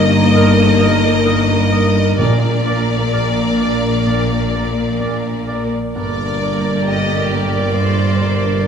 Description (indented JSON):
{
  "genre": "cinematic, emotional film score for orchestra",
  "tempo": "65 BPM",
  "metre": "4/4",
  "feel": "rubato",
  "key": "Bb major",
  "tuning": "A4 = 439 Hz",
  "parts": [
    { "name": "rich studio violin section", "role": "melody", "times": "0.0-8.7 s", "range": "D5 to Eb5", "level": "-22 LUFS", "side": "left 3 dB", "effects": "none" },
    { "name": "clear oboe", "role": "second line", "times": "0.0-8.7 s", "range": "D5 to Eb5", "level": "-27 LUFS", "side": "right 2 dB", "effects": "none" },
    { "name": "rich studio violin section", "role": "second line", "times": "0.0-8.6 s", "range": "G4 to C5", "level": "-26 LUFS", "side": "left 1 dB", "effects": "none" },
    { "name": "warm clarinet", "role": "second line", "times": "0.0-8.7 s", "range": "Bb4", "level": "-28 LUFS", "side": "right 2 dB", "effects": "none" },
    { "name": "rich studio viola section", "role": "accompaniment", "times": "0.0-8.7 s", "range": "G3 to Bb3", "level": "-25 LUFS", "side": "equal", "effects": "none" },
    { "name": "warm grand piano", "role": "accompaniment", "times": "0.0-8.7 s", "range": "G1 to Eb5", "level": "-23 LUFS", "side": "left 2 dB", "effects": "none" },
    { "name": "dark French horn section", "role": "sustained chords", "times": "0.0-8.7 s", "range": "Bb2 to Eb4", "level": "-22 LUFS", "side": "left 6 dB", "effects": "none" },
    { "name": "clear symphonic double bass section", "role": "bass", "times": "0.0-8.7 s", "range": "G1 to Bb1", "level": "-20 LUFS", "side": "right 4 dB", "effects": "none" },
    { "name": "rich studio cello section", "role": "bass", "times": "0.0-8.7 s", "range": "G2 to Bb2", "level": "-20 LUFS", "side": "right 1 dB", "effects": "none" },
    { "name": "timpani", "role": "percussion", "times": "2.2-3.6 s", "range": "Bb2", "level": "-21 LUFS", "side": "left 1 dB", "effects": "none" }
  ],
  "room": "wet concert hall reverb, RT60 2.1 s",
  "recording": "minimal, uncompressed stereo recording",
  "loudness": "-13 LUFS",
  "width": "side -7 dB against mid",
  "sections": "0.0-8.7 A section",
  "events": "none",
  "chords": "0.0 Eb/G; 2.2 Bb; 5.9 Gm",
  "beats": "0.34 1.25 | 2.19 3.14 4.07 5.00 | 5.95 6.87 7.77 8.67"
}